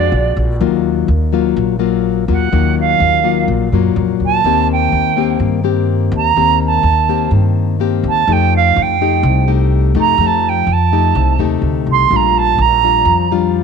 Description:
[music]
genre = bossa nova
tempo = 125 BPM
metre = 4/4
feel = straight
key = unclear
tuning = A4 = 440 Hz
[part]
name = silver concert flute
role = melody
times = 0.0-13.3 s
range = D5 to C6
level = -14 LUFS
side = right 10 dB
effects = none
[part]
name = nylon-string guitar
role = accompaniment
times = 0.0-13.6 s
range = Bb2 to G4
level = -16 LUFS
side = left 13 dB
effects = none
[part]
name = upright bass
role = bass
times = 0.0-13.6 s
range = Bb1 to G2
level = -16 LUFS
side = right 1 dB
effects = none
[sound]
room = moderate spring reverb, RT60 2.0 s, studio ambience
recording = 1960s-style stereo with parts hard left and right, nothing above 11.0 kHz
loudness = -11 LUFS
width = side -6 dB against mid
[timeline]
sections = 0.0-13.6 A section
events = flute solo 0.0-13.6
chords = 0.1 Bbaug7; 0.6 Ebmadd9; 4.4 Cm7/Eb; 8.3 F9; 12.1 Bb6

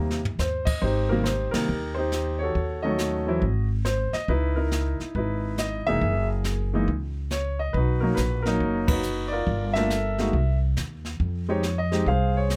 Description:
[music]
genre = jazz piano trio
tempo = 139 BPM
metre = 4/4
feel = swing 65% on 8ths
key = unclear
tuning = A4 = 441 Hz
[part]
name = warm baby grand piano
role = melody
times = 0.0-12.6 s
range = C3 to F5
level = -28 LUFS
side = equal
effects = none
[part]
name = upright bass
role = bass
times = 0.0-12.6 s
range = F1 to F2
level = -29 LUFS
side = equal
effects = none
[part]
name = jazz brush drum kit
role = drums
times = 0.1-12.6 s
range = brushed snare drum, crash cymbal, hi-hat, kick drum, ride cymbal, snare drum, toms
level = -33 LUFS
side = equal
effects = none
[sound]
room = little or no reverb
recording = close, detailed microphones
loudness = -25 LUFS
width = mono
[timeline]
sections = 0.8-12.6 A section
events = drum fill 0.0-0.4; band accent 1.5, 8.8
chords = 0.0 Abmaj7 (rootless); 0.8 Abmaj7; 2.6 Ebm7b5; 3.4 Ab; 4.3 Dbm9; 6.0 Gb9; 7.7 Bmaj9; 9.5 Gm9; 10.3 Cm; 11.2 Fm7

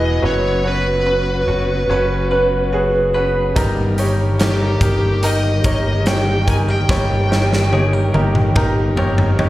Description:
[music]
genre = pop ballad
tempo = 72 BPM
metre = 4/4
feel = straight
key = unclear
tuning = A4 = 440 Hz
[part]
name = bluesy overdriven lead guitar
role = melody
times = 0.0-9.5 s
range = G4 to G#5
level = -21 LUFS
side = equal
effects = distortion, slapback echo
[part]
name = clear concert grand piano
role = accompaniment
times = 0.0-9.5 s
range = G2 to G5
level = -20 LUFS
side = equal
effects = none
[part]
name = warm studio string section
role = sustained chords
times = 0.0-9.5 s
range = C#3 to G4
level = -27 LUFS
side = equal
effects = none
[part]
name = direct-recorded clean electric guitar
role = arpeggios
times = 0.0-9.5 s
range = E3 to B4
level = -29 LUFS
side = left 2 dB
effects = spring reverb, slapback echo, digital delay
[part]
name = fingered electric bass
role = bass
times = 0.0-9.5 s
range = E1 to G1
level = -19 LUFS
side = equal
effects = none
[part]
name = downlifter and riser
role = sound effects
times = 0.0-9.5 s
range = none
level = -39 LUFS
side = right 2 dB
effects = none
[part]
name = huge arena drum kit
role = drums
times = 3.6-9.5 s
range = hi-hat, kick drum, snare drum, toms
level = -19 LUFS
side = equal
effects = none
[sound]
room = light reverb, small room reverb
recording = live gig heard through the venue's PA, recital hall reverb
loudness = -14 LUFS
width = side -15 dB against mid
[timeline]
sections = 0.0-9.5 A section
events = drum fill 6.9-9.5; grand piano fill 8.6-9.5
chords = 0.2 F#sus4; 3.6 D#/G

